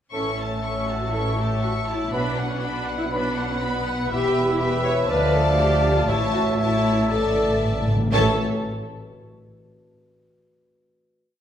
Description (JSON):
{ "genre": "cinematic, heroic adventure film score", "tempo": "121 BPM", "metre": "4/4", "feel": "straight", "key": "A mixolydian", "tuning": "A4 = 440 Hz", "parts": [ { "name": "warm symphonic violin section", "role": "melody", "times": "0.1-8.4 s", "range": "E5 to C#6", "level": "-31 LUFS", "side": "left 4 dB", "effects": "none" }, { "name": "dark clarinet", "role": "second line", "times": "0.1-8.3 s", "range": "A4 to D5", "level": "-34 LUFS", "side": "left 2 dB", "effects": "none" }, { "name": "mellow hollow small flute group", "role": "second line", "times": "0.1-8.4 s", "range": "A5 to B5", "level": "-34 LUFS", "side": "left 2 dB", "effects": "none" }, { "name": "rich symphonic violin section", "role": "second line", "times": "0.1-8.4 s", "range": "F#4 to F5", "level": "-36 LUFS", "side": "left 2 dB", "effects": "none" }, { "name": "rich studio viola section", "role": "accompaniment", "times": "0.1-8.4 s", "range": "A3 to C#5", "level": "-30 LUFS", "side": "equal", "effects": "none" }, { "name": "bright trombone section", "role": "sustained chords", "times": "0.1-8.3 s", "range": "E3 to C#4", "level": "-32 LUFS", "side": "right 2 dB", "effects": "none" }, { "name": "mellow French horn section", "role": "sustained chords", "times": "0.1-8.4 s", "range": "A3 to C#5", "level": "-28 LUFS", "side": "left 2 dB", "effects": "none" }, { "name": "mellow trumpet", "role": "stabs", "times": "0.1-8.3 s", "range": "A4 to D5", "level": "-29 LUFS", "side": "right 1 dB", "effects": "none" }, { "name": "clear symphonic double bass section", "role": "bass", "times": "0.1-8.4 s", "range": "E1 to D2", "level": "-27 LUFS", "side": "right 2 dB", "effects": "none" }, { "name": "rich symphonic cello section", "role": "bass", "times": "0.1-8.4 s", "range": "D2 to B2", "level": "-28 LUFS", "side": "right 1 dB", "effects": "none" }, { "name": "warm oboe", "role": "second line", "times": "0.2-8.3 s", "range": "C#5 to F#5", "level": "-31 LUFS", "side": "equal", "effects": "none" }, { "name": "timpani", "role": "percussion", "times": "6.1-8.4 s", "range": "A2", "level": "-28 LUFS", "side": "equal", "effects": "none" } ], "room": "wet recital hall reverb, RT60 1.6 s", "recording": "recorded in a church or concert hall", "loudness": "-20 LUFS", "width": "side -10 dB against mid", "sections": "0.1-8.1 theme; 8.1-10.1 final chord", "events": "timpani fill 7.1-8.1", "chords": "0.1 A; 2.1 Bm; 4.1 E5; 5.1 Dm; 6.1 A; 7.1 Asus4; 8.1 A" }